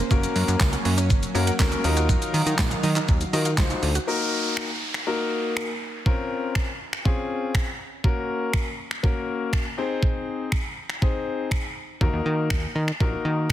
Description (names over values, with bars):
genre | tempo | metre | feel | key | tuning
dance-pop | 121 BPM | 4/4 | straight | Eb dorian | A4 = 440 Hz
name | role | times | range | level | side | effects
chorused pulse-width pad | sustained chords | 0.0-4.1 s | Eb3 to F5 | -30 LUFS | right 1 dB | sidechain pumping
mallet-like synth pluck | arpeggios | 0.0-4.0 s | Gb3 to Gb5 | -34 LUFS | right 7 dB | chorus, sidechain pumping, tape echo
plucky analog bass | bass | 0.0-4.0, 12.0-13.5 s | Gb1 to Eb3 | -24 LUFS | equal | sidechain pumping
clear grand piano | accompaniment | 0.1-13.5 s | Bb3 to C5 | -28 LUFS | left 4 dB | sidechain pumping
clean 12-bit digital drum machine | drums | 0.1-13.5 s | finger snaps, handclaps, hi-hat, kick drum, shaker, snare drum | -24 LUFS | equal | soft clipping on snare
tambourine | percussion | 0.6-3.7 s | none | -44 LUFS | right 9 dB | none
downlifter | sound effects | 4.1-8.0 s | none | -32 LUFS | right 1 dB | none
room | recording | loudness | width
light reverb, digital ambience | dense, heavily limited modern master | -22 LUFS | side -12 dB against mid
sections
0.0-4.1 A section; 4.1-13.5 B section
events
none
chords
0.1 Gb; 1.8 Ebmadd9; 4.1 Ebm; 6.1 Bbmadd9; 8.0 Gb; 9.8 Ab; 12.0 Ebm